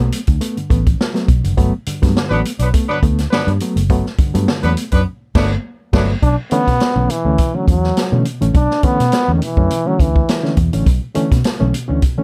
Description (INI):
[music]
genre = funk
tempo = 103 BPM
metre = 4/4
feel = straight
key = B minor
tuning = A4 = 440 Hz
[part]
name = bright reed electric piano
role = stabs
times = 0.0-12.2 s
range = G2 to C#4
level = -23 LUFS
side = equal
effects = overdrive, fast tremolo
[part]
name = vintage muted fingered electric bass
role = bass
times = 0.0-12.0 s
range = F#1 to B2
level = -19 LUFS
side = equal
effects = none
[part]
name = swinging big-band drum kit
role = drums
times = 0.1-12.2 s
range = crash cymbal, hi-hat, kick drum, snare drum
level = -19 LUFS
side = equal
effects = none
[part]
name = dark horn section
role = second line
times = 2.3-6.1 s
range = F#3 to B4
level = -22 LUFS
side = equal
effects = none
[part]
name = clear trombone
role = melody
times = 6.2-10.6 s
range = D#3 to D4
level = -20 LUFS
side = equal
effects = none
[sound]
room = little or no reverb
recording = dark, warm production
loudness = -16 LUFS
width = mono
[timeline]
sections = 0.0-6.2 A section; 6.2-12.2 B section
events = band accent 5.1-6.2; trombone solo 6.2-12.2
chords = 0.0 Gmaj9; 6.2 Bm11